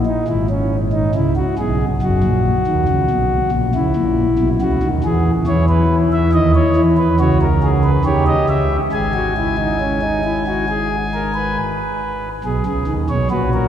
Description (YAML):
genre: classical, baroque-style 3-part fugue for pipe organ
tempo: 69 BPM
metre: 4/4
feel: straight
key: G# minor from 5.5 s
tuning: A4 = 440 Hz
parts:
  - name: pipe organ, principal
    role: solo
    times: 0.0-13.7 s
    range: F#1 to G#5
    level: -14 LUFS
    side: equal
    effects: none
room: wet cathedral reverb, RT60 5.2 s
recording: recorded in a church or concert hall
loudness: -14 LUFS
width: side -9 dB against mid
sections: 0.0-12.4 A section; 12.4-13.7 B section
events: none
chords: 0.3 E/G#; 2.0 D#m/F#; 3.7 C#m; 5.5 E5; 7.2 G#m11/C#; 8.1 D#7; 8.9 G#m; 12.4 G#m/B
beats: 0.27 1.14 | 2.01 2.88 3.73 4.60 | 5.46 6.33 7.19 8.06 | 8.93 9.81 10.68 11.56 | 12.44 13.31